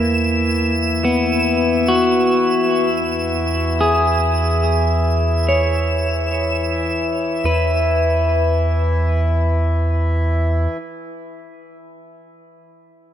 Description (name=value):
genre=ambient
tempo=free time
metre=none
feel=none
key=E major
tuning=A4 = 440 Hz
part: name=clean electric guitar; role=arpeggios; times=0.0-11.4 s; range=A#3 to C#5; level=-19 LUFS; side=left 2 dB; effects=diffuse ambient delay
part: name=round analog bass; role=bass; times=0.0-10.7 s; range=E2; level=-20 LUFS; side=right 1 dB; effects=none
part: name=hand-pumped harmonium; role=drone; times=0.0-10.8 s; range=E3 to E4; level=-22 LUFS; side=left 1 dB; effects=none
part: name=twinkling granular texture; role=texture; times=0.0-7.5 s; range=E7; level=-26 LUFS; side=right 1 dB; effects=built-in reverb
room=wet cathedral reverb, RT60 6.6 s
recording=in a vast, echoing space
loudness=-15 LUFS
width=side -10 dB against mid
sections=0.0-7.5 A section; 7.5-9.9 B section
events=none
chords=0.0 Esus2; 2.5 F#sus2/E (rootless); 7.5 E5